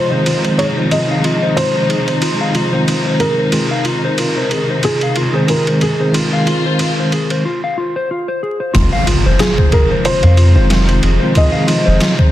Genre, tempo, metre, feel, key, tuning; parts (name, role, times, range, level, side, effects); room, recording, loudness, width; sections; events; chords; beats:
trip hop; 92 BPM; 4/4; swing 56% on 16ths; F minor; A4 = 441 Hz
felt-muted upright piano; melody; 0.0-12.3 s; Ab4 to Eb5; -19 LUFS; equal; tape echo
rich chamber string section; sustained chords; 0.0-12.3 s; C3 to F4; -20 LUFS; equal; vintage 12-bit sampler grit
mellow electric guitar; arpeggios; 0.0-12.3 s; F4 to F5; -21 LUFS; left 2 dB; vintage 12-bit sampler grit, low-pass filter, tape echo
tine electric piano; accompaniment; 0.1-12.3 s; Eb3 to Bb4; -18 LUFS; equal; harmonic tremolo, low-pass filter, tape echo
trip hop sampler-style drum kit; drums; 0.3-12.3 s; kick drum, ride cymbal, snare drum; -19 LUFS; right 1 dB; overdrive, high-pass filter on cymbals, high-pass filter on kick, high-pass filter on snare
impact; sound effects; 8.7-11.4 s; -20 LUFS; equal
warm sub bass; bass; 8.8-12.0 s; F1 to F2; -10 LUFS; equal; tube saturation
light reverb, digital ambience; dense, heavily limited modern master, vinyl crackle; -12 LUFS; side -13 dB against mid
0.0-8.7 A section; 8.7-12.3 B section
filter sweep on tine electric piano 0.0-8.7; break 7.4-8.7; impact 8.7-11.4
0.0 Fm7; 3.5 Ab; 8.7 Fm7
0.27 | 0.92 1.57 2.22 2.87 | 3.53 4.18 4.83 5.48 | 6.13 6.79 7.44 8.09 | 8.74 9.39 10.05 10.70 | 11.35 12.00